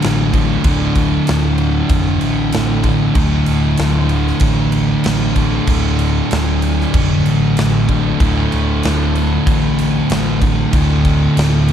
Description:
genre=stoner and doom metal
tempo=95 BPM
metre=4/4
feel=straight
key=unclear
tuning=A4 = 441 Hz
part: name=thick fuzz guitar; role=riff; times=0.0-11.7 s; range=D2 to D3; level=-19 LUFS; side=left 8 dB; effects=distortion
part: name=thick fuzz guitar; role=riff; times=0.0-11.7 s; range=D2 to D3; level=-17 LUFS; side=right 5 dB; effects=distortion
part: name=overdriven picked electric bass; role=bass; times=0.0-11.7 s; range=D1 to A1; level=-19 LUFS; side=equal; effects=none
part: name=big rock drum kit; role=drums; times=0.0-11.7 s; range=crash cymbal, kick drum, snare drum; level=-19 LUFS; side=equal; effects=none
room=light reverb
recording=dark, warm production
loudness=-12 LUFS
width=side -9 dB against mid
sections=0.0-11.7 A section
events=none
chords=0.0 D5

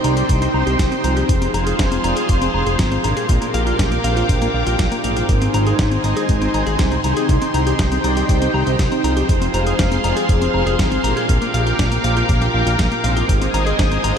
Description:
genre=italo disco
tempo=120 BPM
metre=4/4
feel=straight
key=unclear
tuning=A4 = 439 Hz
part: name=string machine, full ensemble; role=sustained chords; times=0.0-14.2 s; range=Eb4 to Eb6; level=-20 LUFS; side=equal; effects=phaser, ensemble chorus, vintage 12-bit sampler grit, shimmer reverb
part: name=direct-recorded clean electric guitar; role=arpeggios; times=0.0-14.1 s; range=Bb3 to Bb5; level=-24 LUFS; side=left 3 dB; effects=spring reverb, low-pass filter, analog delay, shimmer reverb
part: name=analog synth brass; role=stabs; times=0.0-14.2 s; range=Ab2 to Eb5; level=-25 LUFS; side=right 2 dB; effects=chorus, analog delay, shimmer reverb
part: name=fat analog bass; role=bass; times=0.0-14.1 s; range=F1 to C2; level=-21 LUFS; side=equal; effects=none
part: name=dusty soul sampler-style drum kit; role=drums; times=0.0-14.1 s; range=hi-hat, snare drum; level=-26 LUFS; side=equal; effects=studio reverb
part: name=electronic kick drum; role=drums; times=0.3-13.9 s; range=none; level=-18 LUFS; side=equal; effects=studio reverb
room=moderate huge ambient reverb, RT60 8.2 s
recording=dreamy mix soaked in reverb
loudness=-15 LUFS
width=side -7 dB against mid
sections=0.0-14.2 A section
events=filter sweep on clean electric guitar 0.0-14.2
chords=0.0 Cm; 1.3 Fm; 3.3 Bb6; 5.3 Ab; 7.3 Cm; 9.3 Fm; 11.3 Bb6; 13.3 Ab

